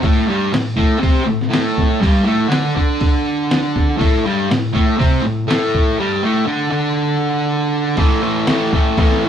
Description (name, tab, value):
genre	garage rock duo or trio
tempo	120 BPM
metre	4/4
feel	straight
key	A minor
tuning	A4 = 440 Hz
part	fuzz guitar	riff	0.0-9.3 s	G2 to D4	-16 LUFS	equal	distortion
part	lo-fi sampler-style drum kit	drums	0.0-9.2 s	crash cymbal, hi-hat, kick drum, snare drum	-17 LUFS	equal	none
room	moderate studio reverb, RT60 0.9 s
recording	band playing live in one room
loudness	-14 LUFS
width	side -9 dB against mid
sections	0.0-8.0 A section; 8.0-9.3 B section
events	break 6.0-8.0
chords	0.0 Am; 8.0 A5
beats	| 0.03 0.52 1.02 1.52 | 2.02 2.52 3.02 3.51 | 4.01 4.51 5.01 5.50 | 6.00 6.50 7.00 7.49 | 7.99 8.48 8.98